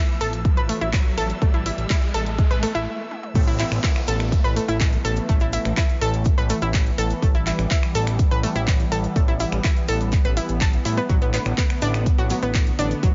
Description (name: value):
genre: progressive house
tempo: 124 BPM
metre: 4/4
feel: straight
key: unclear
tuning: A4 = 442 Hz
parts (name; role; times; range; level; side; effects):
- lush unison pad; sustained chords; 0.0-13.1 s; D3 to B3; -33 LUFS; equal; chorus, phaser, vintage 12-bit sampler grit, sidechain pumping
- riser and downlifter; sound effects; 0.0-7.2 s; none; -36 LUFS; equal; none
- backwards swelling texture; texture; 0.0-2.9 s; E5 to E6; -42 LUFS; equal; built-in reverb, sidechain pumping
- deep house drum kit; drums; 0.1-13.1 s; finger snaps, handclaps, hi-hat, toms; -32 LUFS; equal; high-pass filter on hats, high-pass filter on snare, high-pass filter on toms
- analog pluck; arpeggios; 0.2-13.1 s; F#3 to A5; -29 LUFS; equal; chorus, sidechain pumping, dub echo
- fat analog bass; bass; 0.2-13.1 s; A1 to A2; -28 LUFS; equal; sidechain pumping
- electronic kick drum; drums; 0.5-13.1 s; none; -22 LUFS; equal; none
- cabasa; percussion; 3.4-13.1 s; none; -42 LUFS; equal; none
room: little or no reverb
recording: nothing above 7.5 kHz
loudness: -21 LUFS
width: mono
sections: 0.0-3.4 A section; 3.4-13.1 B section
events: build-up 0.0-3.4; riser 0.0-2.9; stop 2.9-3.4; drum fill 3.1; drop 3.4-13.1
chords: 0.0 Asus2; 11.1 Bm7/A